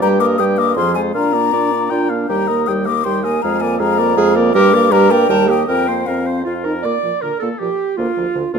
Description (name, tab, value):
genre	quick classical-period movement for wind quintet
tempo	159 BPM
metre	3/4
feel	straight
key	Bb major from 4.5 s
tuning	A4 = 440 Hz
part	mellow hollow concert flute	melody	0.0-8.6 s	F5 to Eb6	-20 LUFS	left 11 dB	none
part	warm oboe	second line	0.0-8.6 s	F4 to G5	-24 LUFS	left 4 dB	none
part	dark French horn	accompaniment	0.0-8.6 s	D3 to F4	-20 LUFS	left 1 dB	none
part	warm clarinet	accompaniment	0.0-8.6 s	D4 to D5	-20 LUFS	right 8 dB	none
part	mellow bassoon	bass	0.0-8.6 s	D2 to Bb2	-19 LUFS	right 2 dB	none
room	moderate large studio reverb, RT60 1.3 s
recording	none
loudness	-13 LUFS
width	side -6 dB against mid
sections	0.0-6.8 A section; 6.8-8.6 B section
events	none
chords	0.0 Eb/G; 0.8 Fm; 1.1 Bb; 2.3 Eb; 3.4 Bb7/F; 4.5 Gm; 5.3 Eb; 5.7 Fsus4; 6.5 F7sus4; 6.8 Bb; 8.0 Bb/D